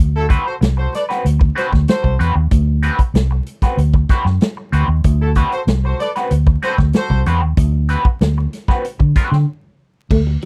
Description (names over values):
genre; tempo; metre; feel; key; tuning
funk; 95 BPM; 4/4; straight; D mixolydian; A4 = 441 Hz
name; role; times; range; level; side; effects
vintage muted fingered electric bass; bass; 0.0-10.4 s; C2 to D3; -17 LUFS; equal; none
clear horn section; second line; 0.2-7.2 s; E4 to D5; -23 LUFS; equal; none
electric guitar at the edge of break-up; accompaniment; 0.3-9.4 s; C4 to B4; -23 LUFS; equal; wah, warbly pitch drift
swinging big-band drum kit; drums; 0.3-10.5 s; crash cymbal, hi-hat, kick drum, snare drum; -18 LUFS; equal; none
electric guitar at the edge of break-up; riff; 10.1-10.5 s; A3; -21 LUFS; equal; analog chorus
room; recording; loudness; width
little or no reverb; dry, close 1970s-style studio recording, vinyl crackle; -16 LUFS; mono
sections
0.0-10.1 A section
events
break 9.5-10.1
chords
0.0 D13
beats
0.61 1.25 1.88 | 2.52 3.15 3.78 4.41 | 5.05 5.68 6.31 6.94 | 7.58 8.21 8.84 9.47 | 10.11